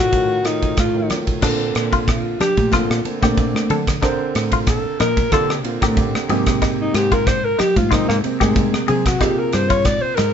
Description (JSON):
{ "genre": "electric jazz fusion", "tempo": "93 BPM", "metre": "4/4", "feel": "swing 54% on 16ths", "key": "Bb major", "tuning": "A4 = 438 Hz", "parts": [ { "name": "breathy alto saxophone", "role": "melody", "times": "0.0-10.3 s", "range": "Bb3 to D5", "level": "-19 LUFS", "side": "left 1 dB", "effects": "none" }, { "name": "warm grand piano", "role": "accompaniment", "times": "0.0-10.1 s", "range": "C3 to C5", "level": "-23 LUFS", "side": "right 3 dB", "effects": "none" }, { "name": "woody fretless electric bass", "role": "bass", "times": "0.0-10.3 s", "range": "G2 to D3", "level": "-23 LUFS", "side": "equal", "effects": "none" }, { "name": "crisp fusion drum kit", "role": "drums", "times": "0.1-10.3 s", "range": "crash cymbal, kick drum, ride cymbal, rim click", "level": "-21 LUFS", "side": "equal", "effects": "none" }, { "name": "congas", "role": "percussion", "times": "1.1-10.3 s", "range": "none", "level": "-25 LUFS", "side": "equal", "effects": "none" }, { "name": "clean electric guitar", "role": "stabs", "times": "1.4-10.3 s", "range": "D4 to A4", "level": "-24 LUFS", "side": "left 6 dB", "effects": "none" } ], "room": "light reverb", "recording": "band playing live in one room, nothing above 7.7 kHz", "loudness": "-15 LUFS", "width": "side -8 dB against mid", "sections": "0.0-1.4 A section; 1.4-10.3 B section", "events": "alto saxophone solo 1.4-10.3", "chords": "0.0 F7b9; 1.4 Bbmaj9; 6.3 Abmaj9" }